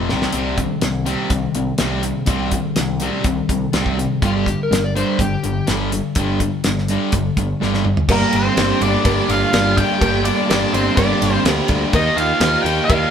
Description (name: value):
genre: classic rock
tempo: 124 BPM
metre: 4/4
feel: straight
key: G minor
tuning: A4 = 438 Hz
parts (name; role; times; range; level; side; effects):
- crunchy overdriven guitar; riff; 0.0-13.1 s; G2 to G4; -22 LUFS; right 5 dB; none
- distorted electric guitar; riff; 0.0-13.1 s; G2 to Eb4; -23 LUFS; left 6 dB; overdrive
- growling picked electric bass; bass; 0.0-13.0 s; F1 to Eb2; -23 LUFS; equal; overdrive
- damped 70s drum kit; drums; 0.1-13.0 s; crash cymbal, hi-hat, kick drum, ride cymbal, snare drum, toms; -21 LUFS; equal; none
- overdriven slide guitar; second line; 4.3-5.7 s; F4 to D5; -24 LUFS; left 4 dB; none
- octave-fuzz lead guitar; melody; 8.1-13.1 s; Bb4 to G5; -20 LUFS; left 2 dB; distortion
- lead guitar through a small cranked amp; second line; 8.1-13.1 s; Bb3 to G4; -24 LUFS; equal; overdrive
- reed electric piano; accompaniment; 8.1-13.1 s; G4 to Eb5; -27 LUFS; right 3 dB; fast tremolo
- cowbell; percussion; 8.1-13.0 s; none; -27 LUFS; equal; none
room: moderate stone room reverb, RT60 1.2 s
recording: band playing live in one room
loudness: -15 LUFS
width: side -8 dB against mid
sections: 0.0-8.1 A section; 8.1-13.1 B section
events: drum fill 0.0-0.3, 7.6-8.1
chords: 0.1 Cm; 4.2 G5; 8.1 Gm; 11.9 Eb